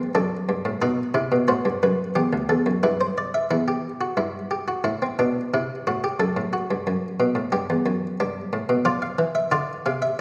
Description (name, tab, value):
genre	classical, baroque-style 3-part fugue for harpsichord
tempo	90 BPM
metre	4/4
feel	straight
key	unclear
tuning	A4 = 440 Hz
part	buff-stop harpsichord	solo	0.0-10.2 s	D2 to F5	-24 LUFS	equal	none
room	wet recital hall reverb, RT60 1.7 s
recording	heard from further back in the room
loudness	-24 LUFS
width	mono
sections	0.0-3.5 A section; 3.5-10.2 B section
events	none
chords	0.0 F#m; 0.8 B7; 2.2 Em; 4.9 Am7; 6.2 F#madd11; 7.5 Gmaj7(no3); 8.9 Dm